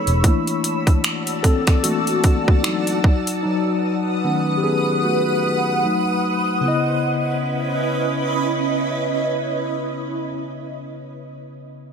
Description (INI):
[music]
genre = contemporary R&B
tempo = 75 BPM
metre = 4/4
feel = swing 58% on 16ths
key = unclear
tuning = A4 = 440 Hz
[part]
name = mellow tine electric piano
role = accompaniment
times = 0.0-11.9 s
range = C#3 to D#5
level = -22 LUFS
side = left 3 dB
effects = fast stereo tremolo
[part]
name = granular cloud pad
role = sustained chords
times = 0.0-10.3 s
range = C#4 to E6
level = -22 LUFS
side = right 2 dB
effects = built-in reverb, phaser, sidechain pumping
[part]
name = trap drum kit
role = drums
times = 0.1-3.4 s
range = finger snaps, hi-hat, kick drum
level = -17 LUFS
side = equal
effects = overdrive
[sound]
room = light reverb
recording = none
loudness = -18 LUFS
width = side -6 dB against mid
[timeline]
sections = 0.0-6.6 A section; 6.6-9.8 B section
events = tine electric piano solo 0.0-6.6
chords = 0.2 F#7alt; 3.0 B7; 5.8 Cdim7; 6.6 C#m9